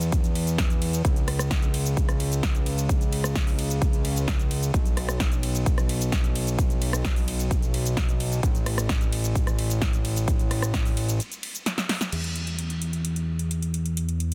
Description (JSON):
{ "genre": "EDM, festival progressive house", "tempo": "130 BPM", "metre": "4/4", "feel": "straight", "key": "unclear", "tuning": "A4 = 440 Hz", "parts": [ { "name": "fat analog bass", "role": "bass", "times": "0.0-14.3 s", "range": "A1 to E2", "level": "-29 LUFS", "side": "equal", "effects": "sidechain pumping" }, { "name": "big-room dance drum kit", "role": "drums", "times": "0.0-14.3 s", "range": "cabasa, crash cymbal, hi-hat, ride cymbal, rim click, snare drum", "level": "-33 LUFS", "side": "equal", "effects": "studio reverb" }, { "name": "electronic kick drum", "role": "drums", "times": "0.1-10.8 s", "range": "none", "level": "-26 LUFS", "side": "equal", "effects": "studio reverb" } ], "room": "little or no reverb", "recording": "dense, heavily limited modern master", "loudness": "-25 LUFS", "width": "mono", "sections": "0.0-12.1 A section; 12.1-14.3 B section", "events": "drop 0.0-12.1; break 11.2-12.1; drum fill 11.7-12.1; band accent 12.0", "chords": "none" }